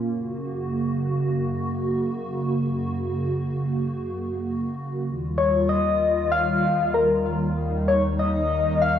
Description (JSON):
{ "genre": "IDM", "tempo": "96 BPM", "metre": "4/4", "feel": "straight", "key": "unclear", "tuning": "A4 = 439 Hz", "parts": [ { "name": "hollow soft pad", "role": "sustained chords", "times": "0.0-9.0 s", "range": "Eb2 to Gb4", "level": "-24 LUFS", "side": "right 1 dB", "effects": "ensemble chorus" }, { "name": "soft struck synth lead", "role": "melody", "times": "5.4-9.0 s", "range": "Bb4 to F5", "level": "-21 LUFS", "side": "left 3 dB", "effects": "chorus, tape echo" } ], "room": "moderate lush hall reverb, RT60 2.5 s", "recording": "studio reverb", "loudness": "-22 LUFS", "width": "side -9 dB against mid", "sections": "0.0-9.0 A section", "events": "filter sweep on analog synth pad 0.0-9.0", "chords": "0.1 Gb; 5.1 Ebadd9" }